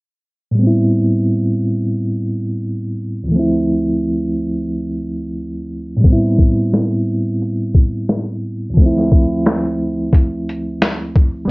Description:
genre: lo-fi hip hop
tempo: 88 BPM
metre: 4/4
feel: swing 56% on 16ths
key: A minor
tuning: A4 = 440 Hz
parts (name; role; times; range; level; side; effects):
- reed electric piano; accompaniment; 0.5-11.5 s; D2 to E4; -16 LUFS; equal; fast tremolo, cassette tape, plate reverb
- boom bap sampler-style drum kit; drums; 6.0-11.3 s; finger snaps, hi-hat, kick drum, snare drum; -13 LUFS; equal; none
room: moderate studio reverb, RT60 0.6 s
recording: worn, warbling old tape, cassette tape, warbly pitch drift, low-pass filter, nothing above 10.8 kHz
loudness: -14 LUFS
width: side -25 dB against mid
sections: 0.6-11.5 A section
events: filter sweep 0.6-11.5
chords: 0.6 Am9; 3.3 Dm7; 6.0 Am9; 8.8 Dm7

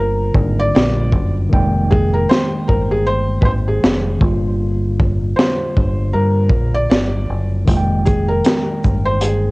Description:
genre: lo-fi hip hop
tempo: 78 BPM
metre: 4/4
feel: swing 60% on 16ths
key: F dorian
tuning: A4 = 440 Hz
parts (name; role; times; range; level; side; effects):
- felt-muted upright piano; melody; 0.0-9.5 s; Ab4 to D5; -21 LUFS; equal; cassette tape
- mellow tine electric piano; accompaniment; 0.0-9.5 s; D3 to G5; -22 LUFS; equal; medium stereo tremolo
- deep dub fingered electric bass; bass; 0.0-9.5 s; F1 to G2; -18 LUFS; equal; none
- crunchy breakbeat drum kit; drums; 0.3-9.4 s; hi-hat, kick drum, shaker, snare drum; -17 LUFS; equal; cassette tape
room: light reverb, small room ambience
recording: home recording on cassette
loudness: -14 LUFS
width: side -24 dB against mid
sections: 0.0-9.5 A section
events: break 0.0-7.7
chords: 0.0 Gm7; 1.5 Fm11; 4.2 Gm7; 7.7 Fm11

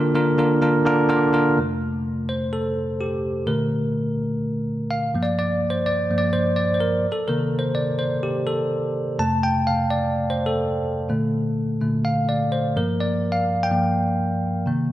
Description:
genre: pop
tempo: 126 BPM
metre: 4/4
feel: straight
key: F mixolydian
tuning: A4 = 442 Hz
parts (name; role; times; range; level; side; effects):
- bell-like tine electric piano; solo; 0.0-14.9 s; F2 to A5; -20 LUFS; equal; none
room: moderate lush hall reverb, RT60 2.5 s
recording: none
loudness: -20 LUFS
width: side -14 dB against mid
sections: 0.0-1.6 A section; 1.6-14.9 B section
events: tine electric piano solo 1.6-14.9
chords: 0.0 Bb/D; 1.6 Fadd9; 3.5 Bbmaj7; 5.1 Gm7; 7.1 Cm7; 9.2 F; 11.1 Bbmaj7; 12.8 Gm7

